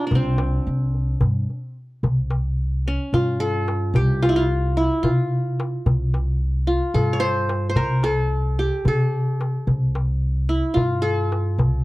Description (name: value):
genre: Turkish makam ensemble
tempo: 220 BPM (eighths)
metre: 7/8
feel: straight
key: C makam hicaz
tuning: A4 = 440 Hz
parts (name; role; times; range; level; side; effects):
- qanun; melody; 0.0-11.8 s; C4 to Db5; -23 LUFS; equal; none
- upright bass; bass; 0.1-11.8 s; C2 to C3; -22 LUFS; equal; none
- darbuka; percussion; 0.1-11.7 s; none; -24 LUFS; left 1 dB; none
room: little or no reverb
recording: dry, close 1970s-style studio recording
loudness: -19 LUFS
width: side -19 dB against mid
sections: 0.0-2.0 A section; 2.0-11.8 B section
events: none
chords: none